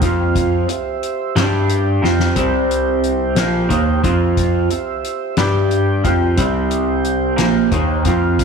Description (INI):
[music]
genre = psychedelic rock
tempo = 60 BPM (dotted quarters)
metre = 6/8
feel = straight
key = unclear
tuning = A4 = 439 Hz
[part]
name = mellow tonewheel organ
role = sustained chords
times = 0.0-8.4 s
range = F4 to G5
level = -24 LUFS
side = right 5 dB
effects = slow rotary speaker
[part]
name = electric guitar through a small old amp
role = riff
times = 0.0-8.4 s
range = Bb2 to G4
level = -17 LUFS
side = right 1 dB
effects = phaser
[part]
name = tine electric piano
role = bass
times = 0.0-8.4 s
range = Bb1 to G2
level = -20 LUFS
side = equal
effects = medium tremolo
[part]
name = soft-mallet drum kit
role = drums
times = 0.0-8.4 s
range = hi-hat, kick drum, snare drum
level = -22 LUFS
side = left 4 dB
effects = none
[sound]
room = moderate echo chamber reverb, RT60 2.0 s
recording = 1960s-style stereo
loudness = -14 LUFS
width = side -5 dB against mid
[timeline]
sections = 0.0-8.4 A section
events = drum fill 2.0-2.4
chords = 0.0 F5; 0.7 C; 1.4 G5; 2.0 C5; 4.0 F5; 4.7 C; 5.4 G5; 6.0 C5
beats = | 0.36 1.36 | 2.36 3.37 | 4.37 5.38 | 6.38 7.38 | 8.39